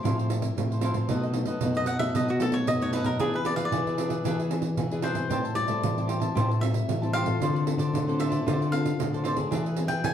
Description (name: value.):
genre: samba and choro.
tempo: 114 BPM.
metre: 4/4.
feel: straight.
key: A minor.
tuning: A4 = 441 Hz.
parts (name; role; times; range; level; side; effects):
cavaquinho; melody; 0.0-10.1 s; F#4 to G#5; -30 LUFS; left 1 dB; plate reverb.
cavaquinho; accompaniment; 0.0-10.1 s; D4 to A5; -34 LUFS; equal; none.
nylon-string guitar; accompaniment; 0.0-10.1 s; F#2 to A4; -32 LUFS; left 4 dB; none.
nylon-string guitar; bass; 0.0-10.1 s; A2 to B3; -28 LUFS; equal; none.
pandeiro; percussion; 0.1-10.1 s; none; -31 LUFS; right 5 dB; none.
room: wet large studio reverb, RT60 0.9 s.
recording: heard from further back in the room.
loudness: -24 LUFS.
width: side -9 dB against mid.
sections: 0.0-10.1 A section.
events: cavaquinho solo 0.0-10.1.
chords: 0.0 Fmaj7/A; 1.1 B7; 3.2 E7; 5.3 Am7; 7.4 Dm7; 9.5 E7.